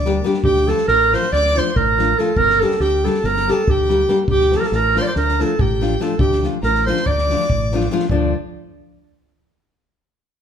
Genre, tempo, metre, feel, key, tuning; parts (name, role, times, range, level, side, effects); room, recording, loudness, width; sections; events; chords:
balkan folk, Balkan wedding band; 282 BPM (eighths); 9/8; straight; D minor; A4 = 437 Hz
mellow clarinet; melody; 0.0-8.3 s; G4 to D5; -17 LUFS; right 2 dB
clear violin; second line; 0.0-8.3 s; D4 to D6; -29 LUFS; left 2 dB
fingered electric bass; bass; 0.0-8.3 s; G1 to D2; -22 LUFS; equal
nylon-string guitar; accompaniment; 0.1-8.3 s; F3 to G4; -23 LUFS; left 4 dB
unplugged drum kit; percussion; 0.1-8.3 s; kick drum, snare drum; -25 LUFS; left 1 dB
moderate large studio reverb, RT60 1.2 s; band playing live in one room; -15 LUFS; side -8 dB against mid
0.0-8.1 A section; 8.1-10.0 B section
0.4 Dm; 2.4 Gm; 4.3 Dm